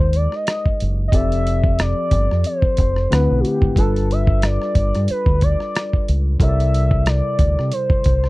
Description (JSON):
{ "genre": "R&B, neo-soul", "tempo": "91 BPM", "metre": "4/4", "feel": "swing 55% on 16ths", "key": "F major", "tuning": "A4 = 440 Hz", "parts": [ { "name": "gliding portamento lead", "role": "melody", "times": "0.0-8.3 s", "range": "F#4 to E5", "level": "-22 LUFS", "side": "equal", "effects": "chorus" }, { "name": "overdriven tine electric piano", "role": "accompaniment", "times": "0.0-8.3 s", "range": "C3 to F#5", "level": "-25 LUFS", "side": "left 3 dB", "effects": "none" }, { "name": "deep dub fingered electric bass", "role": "bass", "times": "0.0-8.3 s", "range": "F1 to C3", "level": "-18 LUFS", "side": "equal", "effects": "none" }, { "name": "dusty soul sampler-style drum kit", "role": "drums", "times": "0.1-8.3 s", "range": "hi-hat, kick drum, rim click", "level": "-18 LUFS", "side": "equal", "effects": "none" } ], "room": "little or no reverb", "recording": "dry, close 1970s-style studio recording", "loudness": "-15 LUFS", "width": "side -20 dB against mid", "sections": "0.0-8.3 A section", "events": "none", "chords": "0.0 Abmaj9; 1.1 F69; 3.1 D13; 3.8 G9; 6.4 C13" }